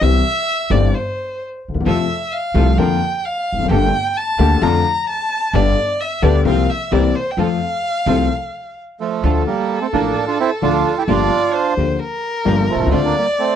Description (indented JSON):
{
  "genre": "tango",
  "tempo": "130 BPM",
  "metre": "4/4",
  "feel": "rubato",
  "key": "F major, D minor from 9.2 s",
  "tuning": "A4 = 439 Hz",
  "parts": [
    { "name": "rich violin", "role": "second line", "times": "0.0-13.6 s", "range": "A4 to Bb5", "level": "-20 LUFS", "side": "equal", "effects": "none" },
    { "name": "dark upright piano", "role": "accompaniment", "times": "0.0-13.1 s", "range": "G1 to A4", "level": "-19 LUFS", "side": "left 8 dB", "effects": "none" },
    { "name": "upright bass", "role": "bass", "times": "0.0-13.1 s", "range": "E1 to F2", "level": "-18 LUFS", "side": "right 1 dB", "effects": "none" },
    { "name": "warm studio string section", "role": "stabs", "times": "1.9-13.1 s", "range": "Bb3 to B4", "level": "-26 LUFS", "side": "right 8 dB", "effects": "none" },
    { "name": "bandoneon", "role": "melody", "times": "9.0-13.6 s", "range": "F3 to G4", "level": "-18 LUFS", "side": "right 9 dB", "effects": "none" }
  ],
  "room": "little or no reverb",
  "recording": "dry, close 1970s-style studio recording, lossy compression artefacts",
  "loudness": "-15 LUFS",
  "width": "side -9 dB against mid",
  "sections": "0.0-9.2 A section; 9.2-13.6 B section",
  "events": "violin solo 0.0-9.2",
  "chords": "0.0 C; 1.9 F; 2.8 Bb/F; 3.7 Gmadd9; 4.6 Dm/F; 5.5 G; 6.5 C7sus4; 6.9 C7; 7.4 F; 9.2 Dm; 11.1 Gm7; 12.9 Dm7"
}